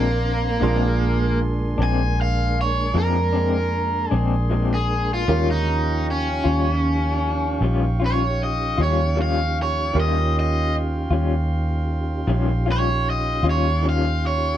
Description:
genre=blues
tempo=52 BPM (dotted quarters)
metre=12/8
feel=straight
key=unclear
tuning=A4 = 441 Hz
part: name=overdriven electric guitar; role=melody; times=0.0-14.6 s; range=Bb3 to Ab5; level=-24 LUFS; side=right 1 dB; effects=none
part: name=bright grand piano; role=accompaniment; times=0.0-14.6 s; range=Db4 to C6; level=-32 LUFS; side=right 5 dB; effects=none
part: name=electric guitar through a small old amp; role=accompaniment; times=0.0-14.1 s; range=Bb2 to F4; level=-26 LUFS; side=left 7 dB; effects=tremolo
part: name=mellow tonewheel organ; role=sustained chords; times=0.0-14.6 s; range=D3 to Bb4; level=-30 LUFS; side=right 1 dB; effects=slow rotary speaker, chorus vibrato
part: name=pipe organ, principal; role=sustained chords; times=0.0-14.6 s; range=D4 to Db6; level=-34 LUFS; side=equal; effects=none
part: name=vintage muted fingered electric bass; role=bass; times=0.0-14.6 s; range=Bb1 to F2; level=-22 LUFS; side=equal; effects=none
room=light reverb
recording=dark, warm production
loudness=-19 LUFS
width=side -11 dB against mid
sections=0.0-14.6 A section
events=overdriven electric guitar solo 0.0-14.6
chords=0.0 Bb9; 5.3 Eb9

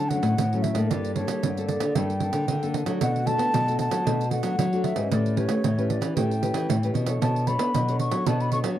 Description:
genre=samba and choro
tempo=114 BPM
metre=4/4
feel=straight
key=unclear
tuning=A4 = 438 Hz
part: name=breathy mellow concert flute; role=melody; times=0.0-8.6 s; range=C#5 to C#6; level=-29 LUFS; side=equal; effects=none
part: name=nylon-string guitar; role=accompaniment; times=0.0-8.8 s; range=A2 to C#5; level=-30 LUFS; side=left 2 dB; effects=none
part: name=nylon-string guitar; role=bass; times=0.0-8.8 s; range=G2 to B3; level=-26 LUFS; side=left 1 dB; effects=none
part: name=pandeiro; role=percussion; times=0.0-8.8 s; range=none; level=-29 LUFS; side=right 7 dB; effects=none
room=little or no reverb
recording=dry, close 1970s-style studio recording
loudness=-22 LUFS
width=side -12 dB against mid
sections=0.0-8.8 A section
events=none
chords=0.0 Dmaj7; 0.9 Gmadd9; 3.0 Bm7; 5.1 A9; 7.2 Bm9

